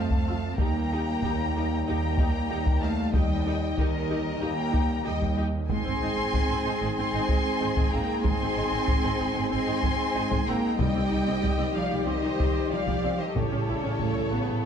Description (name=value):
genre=cinematic, epic orchestral film score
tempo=94 BPM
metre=4/4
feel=straight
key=unclear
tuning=A4 = 443 Hz
part: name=warm symphonic violin section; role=melody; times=0.0-14.7 s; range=C#5 to C6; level=-34 LUFS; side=left 2 dB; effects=none
part: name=clear symphonic violin section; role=second line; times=0.0-14.7 s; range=A4 to Ab5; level=-34 LUFS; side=left 2 dB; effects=none
part: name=rich symphonic viola section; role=accompaniment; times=0.0-14.6 s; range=G3 to Ab4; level=-33 LUFS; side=right 2 dB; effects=none
part: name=dark French horn section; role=sustained chords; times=0.0-14.7 s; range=G3 to E4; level=-33 LUFS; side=left 5 dB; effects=none
part: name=clear symphonic double bass section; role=bass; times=0.0-14.5 s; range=Ab1 to F2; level=-32 LUFS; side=right 3 dB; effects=none
part: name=rich symphonic cello section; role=bass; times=0.0-14.7 s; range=C#3 to C4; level=-32 LUFS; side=right 2 dB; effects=none
part: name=taiko ensemble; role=drums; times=0.1-14.6 s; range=none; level=-28 LUFS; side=equal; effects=none
part: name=timpani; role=percussion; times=10.8-11.7 s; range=C3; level=-34 LUFS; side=left 3 dB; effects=none
room=moderate scoring stage reverb, RT60 1.9 s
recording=dark, warm production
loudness=-24 LUFS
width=side -8 dB against mid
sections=0.0-14.7 A section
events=none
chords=0.0 F; 0.6 Eb; 5.7 Ab; 10.8 Cm; 13.4 A7